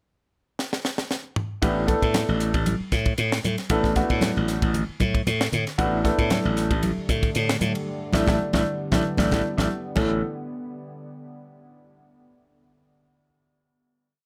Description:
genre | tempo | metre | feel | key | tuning
electric jazz fusion | 115 BPM | 4/4 | swing 54% on 16ths | unclear | A4 = 442 Hz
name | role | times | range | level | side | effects
tight funk drum kit | drums | 0.6-10.1 s | crash cymbal, hi-hat, kick drum, ride cymbal, snare drum, toms | -29 LUFS | equal | none
warm baby grand piano | accompaniment | 1.6-10.2 s | E3 to A4 | -28 LUFS | equal | none
glassy slap bass | bass | 1.6-10.2 s | A1 to A2 | -27 LUFS | equal | none
congas | percussion | 1.6-10.2 s | none | -32 LUFS | equal | none
deep dark ambient pad | sustained chords | 6.8-10.2 s | D3 to B3 | -36 LUFS | equal | chorus, built-in reverb
room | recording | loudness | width
light reverb | none | -24 LUFS | mono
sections
0.0-1.6 pickup bar; 1.6-10.0 groove; 10.0-12.1 final chord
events
drum fill 0.6-1.6, 9.4-10.0; band accent 7.9-10.0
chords
0.0 N.C.; 1.6 A9sus4; 10.0 A

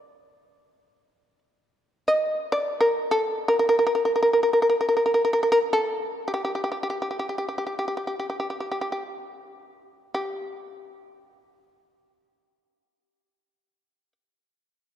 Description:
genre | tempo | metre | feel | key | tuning
japanese traditional | free time | none | none | G hirajoshi | A4 = 440 Hz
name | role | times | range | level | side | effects
shamisen | melody | 0.0-14.1 s | G4 to Eb5 | -22 LUFS | equal | none
room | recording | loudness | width
moderate church reverb, RT60 3.1 s | dark, warm production | -22 LUFS | side -10 dB against mid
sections
0.0-10.2 A section; 10.2-14.6 B section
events
slowing down 6.0-10.2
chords
none

